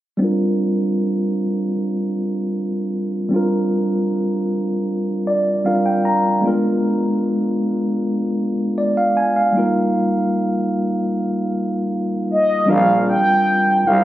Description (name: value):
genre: contemporary R&B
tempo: 77 BPM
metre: 4/4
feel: straight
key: Bb major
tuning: A4 = 441 Hz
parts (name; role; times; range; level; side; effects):
- mellow tine electric piano; accompaniment; 0.2-14.0 s; G3 to Bb5; -18 LUFS; equal; medium stereo tremolo, low-pass filter
- mellow horn-like synth lead; melody; 12.3-14.0 s; Eb5 to G5; -15 LUFS; equal; chorus, tape echo
- growling FM bass; bass; 12.7-14.0 s; Bb1 to C2; -19 LUFS; equal; none
room: light reverb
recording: recorded on a phone in the room, studio reverb, compression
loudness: -17 LUFS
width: side -14 dB against mid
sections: 0.2-12.7 A section; 12.7-14.0 B section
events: filter sweep on tine electric piano 0.2-12.7; tine electric piano fill 4.9-6.4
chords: 0.2 Bb6; 6.4 Bb7b9; 9.6 Ebadd9; 12.7 Bb6